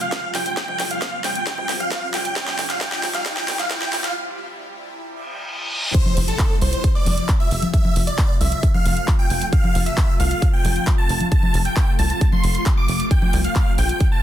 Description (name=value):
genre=uplifting trance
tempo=134 BPM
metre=4/4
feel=straight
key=F major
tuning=A4 = 442 Hz
part: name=big supersaw lead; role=melody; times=0.0-14.2 s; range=A4 to D6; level=-25 LUFS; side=right 1 dB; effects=sidechain pumping, ping-pong delay
part: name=tight sequencer bass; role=bass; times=0.0-13.9 s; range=F1 to C2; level=-23 LUFS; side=equal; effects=sidechain pumping, high-pass filter
part: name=big-room dance drum kit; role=drums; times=0.0-14.1 s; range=congas, crash cymbal, handclaps, hi-hat, snare drum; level=-26 LUFS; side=left 1 dB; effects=high-pass filter on hats, high-pass filter on snare, high-pass filter on perc, high-pass filter on cymbals, high-pass filter on room
part: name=riser, reverse cymbal and impact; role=sound effects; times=1.2-7.7 s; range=none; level=-31 LUFS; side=equal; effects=none
part: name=electronic kick drum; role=drums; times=0.1-14.1 s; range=none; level=-19 LUFS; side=equal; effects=high-pass filter on kick, high-pass filter on room
room=light reverb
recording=dense, heavily limited modern master, high-pass filter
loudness=-17 LUFS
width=side -12 dB against mid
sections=0.0-5.9 A section; 5.9-14.2 B section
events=build-up 0.0-5.9; drum fill 0.0-4.2; filter sweep 0.0-5.9; riser 1.2-4.2; break 4.2-5.9; reverse cymbal 5.2-5.9; drop 5.9-14.2; impact 5.9-7.7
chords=0.0 Csus4; 5.9 F; 13.1 Csus4